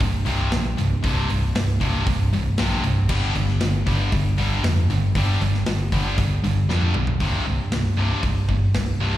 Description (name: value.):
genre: hard rock.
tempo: 117 BPM.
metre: 4/4.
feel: straight.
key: unclear.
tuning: A4 = 440 Hz.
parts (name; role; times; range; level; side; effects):
distorted electric guitar; riff; 0.0-9.2 s; C2 to G3; -27 LUFS; left 7 dB; overdrive, slapback echo.
scooped high-gain guitar; riff; 0.0-9.2 s; C2 to G3; -26 LUFS; right 4 dB; distortion, slapback echo.
picked electric bass; bass; 0.0-9.2 s; C1 to F2; -22 LUFS; equal; none.
big rock drum kit; drums; 0.0-8.9 s; crash cymbal, hi-hat, kick drum, snare drum, toms; -26 LUFS; equal; none.
room: light reverb.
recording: live gig heard through the venue's PA, recital hall reverb.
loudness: -19 LUFS.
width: side -13 dB against mid.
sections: 0.0-7.2 A section; 7.2-9.2 B section.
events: drum fill 6.7-7.2.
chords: 0.0 C5; 3.1 G5; 7.2 C5.